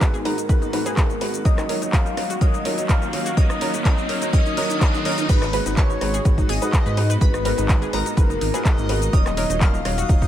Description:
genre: progressive house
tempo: 125 BPM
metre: 4/4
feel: straight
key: G# dorian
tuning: A4 = 440 Hz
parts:
  - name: soft octave-layered synth lead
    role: melody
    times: 0.0-10.3 s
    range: A#4 to E#5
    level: -29 LUFS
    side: left 2 dB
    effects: chorus, sidechain pumping, ping-pong delay
  - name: glassy wavetable pluck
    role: second line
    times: 0.0-10.3 s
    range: A#5 to E#6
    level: -34 LUFS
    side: left 2 dB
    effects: chorus, sidechain pumping, ping-pong delay
  - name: evolving wavetable pad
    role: sustained chords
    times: 0.0-10.3 s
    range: D#3 to F#4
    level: -31 LUFS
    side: left 1 dB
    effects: ensemble chorus, built-in reverb, sidechain pumping
  - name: analog pluck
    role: arpeggios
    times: 0.0-10.3 s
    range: D#4 to B4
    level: -30 LUFS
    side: right 1 dB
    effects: chorus, sidechain pumping, ping-pong delay
  - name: bright grand piano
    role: stabs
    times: 0.0-10.3 s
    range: G#2 to C#5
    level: -28 LUFS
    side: right 1 dB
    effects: sidechain pumping, ping-pong delay
  - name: dark detuned saw bass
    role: bass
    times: 0.0-10.3 s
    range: D#1 to G#2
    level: -27 LUFS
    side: equal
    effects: sidechain pumping, high-pass filter
  - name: deep house drum kit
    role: drums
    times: 0.0-10.3 s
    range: crash cymbal, handclaps, hi-hat, rim click, shaker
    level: -29 LUFS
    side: left 1 dB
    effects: none
  - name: electronic kick drum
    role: drums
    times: 0.0-10.3 s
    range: none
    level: -18 LUFS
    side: equal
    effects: none
  - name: riser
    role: sound effects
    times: 0.8-5.3 s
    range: none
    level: -31 LUFS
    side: right 1 dB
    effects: none
  - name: backwards swelling texture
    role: texture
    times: 6.0-10.3 s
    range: D#5 to D#6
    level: -38 LUFS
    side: left 1 dB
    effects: built-in reverb, sidechain pumping
room: little or no reverb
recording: none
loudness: -18 LUFS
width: side -11 dB against mid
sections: 0.0-5.3 A section; 5.3-10.3 B section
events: build-up 0.0-5.3; filter sweep on ambient pad 0.0-5.3; filter sweep on soft synth lead 0.0-5.3; filter sweep on synth pluck 0.0-5.3; riser 0.8-5.3; drop 5.3-10.3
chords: 0.0 G#m7; 1.5 D#m7; 5.3 G#m7; 9.1 D#m7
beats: 0.01 0.49 0.97 | 1.45 1.93 2.41 2.89 | 3.37 3.85 4.33 4.81 | 5.29 5.77 6.25 6.73 | 7.21 7.69 8.17 8.65 | 9.13 9.61 10.09

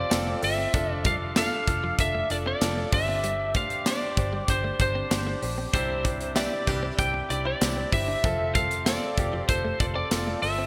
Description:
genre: 1980s-style pop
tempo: 96 BPM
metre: 4/4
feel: straight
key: F major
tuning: A4 = 438 Hz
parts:
  - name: lightly driven lead guitar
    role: melody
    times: 0.0-10.7 s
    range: C5 to G5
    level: -30 LUFS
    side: equal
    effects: subtle chorus
  - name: clear baby grand piano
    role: accompaniment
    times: 0.0-10.7 s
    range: G2 to D5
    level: -35 LUFS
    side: equal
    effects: none
  - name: glass harmonica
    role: sustained chords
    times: 0.0-10.7 s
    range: F4 to D6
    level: -42 LUFS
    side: equal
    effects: none
  - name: direct-recorded clean electric guitar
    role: riff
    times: 0.0-10.7 s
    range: F3 to E4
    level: -42 LUFS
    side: equal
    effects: none
  - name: vintage muted fingered electric bass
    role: bass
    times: 0.0-10.6 s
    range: F1 to C2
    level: -35 LUFS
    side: equal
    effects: none
  - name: modern studio drum kit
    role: drums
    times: 0.1-10.6 s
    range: hi-hat, kick drum, snare drum, tambourine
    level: -31 LUFS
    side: equal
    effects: gated reverb
  - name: warm horn section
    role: stabs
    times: 6.4-6.9 s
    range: E3 to G4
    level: -37 LUFS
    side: equal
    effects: digital delay
room: moderate lush hall reverb, RT60 2.2 s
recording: bright 1980s-style digital production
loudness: -26 LUFS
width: mono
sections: 0.0-10.7 A section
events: band accent 5.7-8.2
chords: 0.0 F; 0.7 Dm/F; 2.9 Gsus4; 5.7 Cadd9; 8.2 F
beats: 0.11 | 0.74 1.36 1.99 2.61 | 3.24 3.86 4.49 5.11 | 5.74 6.36 6.99 7.61 | 8.24 8.86 9.49 10.11

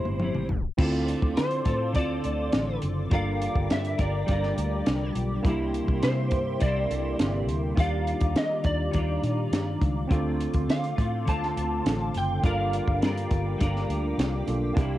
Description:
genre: indie pop, bedroom pop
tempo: 103 BPM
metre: 4/4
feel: straight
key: D minor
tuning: A4 = 441 Hz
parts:
  - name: electric slide guitar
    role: melody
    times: 0.0-13.0 s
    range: C5 to A5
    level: -31 LUFS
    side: equal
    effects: ensemble chorus, cassette tape, plate reverb, tape echo
  - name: clean electric guitar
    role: accompaniment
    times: 0.0-15.0 s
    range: A2 to Bb4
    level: -31 LUFS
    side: left 1 dB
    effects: ensemble chorus, warbly pitch drift, cassette tape
  - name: tine electric piano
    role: accompaniment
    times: 0.0-15.0 s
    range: A3 to A4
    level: -34 LUFS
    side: right 3 dB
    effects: cassette tape
  - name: vintage muted fingered electric bass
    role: bass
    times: 0.0-15.0 s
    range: F#1 to Eb3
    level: -29 LUFS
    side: equal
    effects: none
  - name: compact cocktail drum kit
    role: drums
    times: 0.1-14.9 s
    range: crash cymbal, hi-hat, kick drum, snare drum, toms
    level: -27 LUFS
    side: equal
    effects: cassette tape
  - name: hollow soft pad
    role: sustained chords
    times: 0.8-15.0 s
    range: G4 to D6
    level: -38 LUFS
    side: equal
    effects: ensemble chorus, cassette tape, plate reverb
room: moderate booth ambience, RT60 0.2 s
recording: home recording on cassette, tape stop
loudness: -24 LUFS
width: side -14 dB against mid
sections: 0.8-15.0 A section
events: drum fill 0.0-0.8; tape stop 0.5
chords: 0.0 Am7; 0.8 Dm7; 3.1 Gm7; 5.4 C7; 7.8 Ebmaj9; 10.1 Dm7; 12.4 Gm7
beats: 0.20 | 0.78 1.37 1.95 2.53 | 3.11 3.70 4.28 4.86 | 5.45 6.03 6.61 7.19 | 7.78 8.36 8.94 9.52 | 10.11 10.69 11.27 11.85 | 12.44 13.02 13.60 14.18 | 14.77

